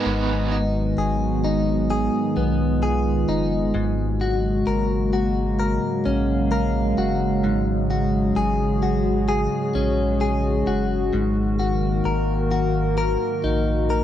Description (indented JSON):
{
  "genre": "dream pop",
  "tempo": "65 BPM",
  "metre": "4/4",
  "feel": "straight",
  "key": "G# dorian",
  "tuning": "A4 = 439 Hz",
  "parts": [
    { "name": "raw garage guitar", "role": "accompaniment", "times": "0.0-0.6 s", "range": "G#3 to D#4", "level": "-24 LUFS", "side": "right 7 dB", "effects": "overdrive, tremolo, lush chorus" },
    { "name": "direct-recorded clean electric guitar", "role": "arpeggios", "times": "0.0-14.0 s", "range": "G#2 to A#4", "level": "-24 LUFS", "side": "left 3 dB", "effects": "lush chorus, tape echo" },
    { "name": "shimmering bell with halo", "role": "texture", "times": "0.0-0.5 s", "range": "F#5 to G#5", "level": "-43 LUFS", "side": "right 1 dB", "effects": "none" },
    { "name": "warbly tape-like pad", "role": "sustained chords", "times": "0.4-14.0 s", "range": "C#3 to E#5", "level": "-23 LUFS", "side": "right 1 dB", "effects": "chorus, built-in reverb" },
    { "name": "warm sub bass", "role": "bass", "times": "0.1-14.0 s", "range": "F#1 to B1", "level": "-25 LUFS", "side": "equal", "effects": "none" }
  ],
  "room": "moderate booth ambience, RT60 0.3 s",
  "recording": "none",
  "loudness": "-19 LUFS",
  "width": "side -11 dB against mid",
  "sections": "0.1-14.0 A section",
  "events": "none",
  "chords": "0.1 G#m7; 3.8 F#add9/G#; 7.4 C#sus4/G#; 11.1 D#m/G#"
}